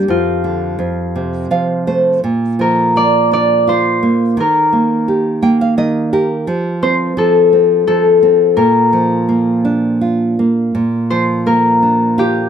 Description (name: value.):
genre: children's music, lullaby.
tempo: 85 BPM.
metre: 3/4.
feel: rubato.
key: Bb major.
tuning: A4 = 438 Hz.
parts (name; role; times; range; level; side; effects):
concert harp; melody; 0.0-12.5 s; F4 to D5; -13 LUFS; left 3 dB; none.
nylon-string guitar; accompaniment; 0.0-12.5 s; F2 to G5; -14 LUFS; right 2 dB; none.
room: light reverb.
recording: close, detailed microphones.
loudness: -11 LUFS.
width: side -8 dB against mid.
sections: 0.0-10.7 A section; 10.7-12.5 A section.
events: nylon-string guitar fill 1.2-2.2, 5.1-6.5.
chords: 0.1 Dm/F; 0.8 F; 2.2 Bb; 4.4 Eb; 6.5 F; 8.6 Bb.